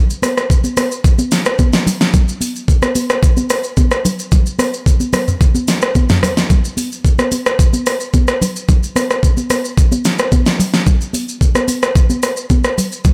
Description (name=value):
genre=amapiano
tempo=110 BPM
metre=4/4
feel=straight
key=none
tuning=none
part: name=smooth R&B drum kit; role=drums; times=0.1-13.1 s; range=hi-hat, kick drum, rim click, shaker, snare drum, toms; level=-15 LUFS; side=equal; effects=none
part: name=congas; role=percussion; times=0.2-13.1 s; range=none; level=-22 LUFS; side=equal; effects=none
room=light reverb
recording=none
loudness=-15 LUFS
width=mono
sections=0.0-13.1 A section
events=none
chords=none